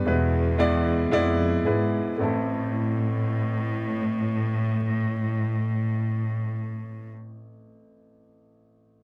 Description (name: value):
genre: pop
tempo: 56 BPM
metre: 4/4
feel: straight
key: A minor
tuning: A4 = 444 Hz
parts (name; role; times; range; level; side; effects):
- dark upright piano; accompaniment; 0.0-9.0 s; A1 to D5; -28 LUFS; equal; none
- warm chamber cello section; bass; 0.0-7.1 s; E2 to A2; -28 LUFS; equal; none
room: small room ambience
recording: none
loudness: -25 LUFS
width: mono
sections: 0.0-2.2 A section; 2.2-6.5 B section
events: slowing down 0.0-2.2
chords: 0.1 E; 2.2 Am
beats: 0.07 1.12 | 2.20 3.28 4.36 5.42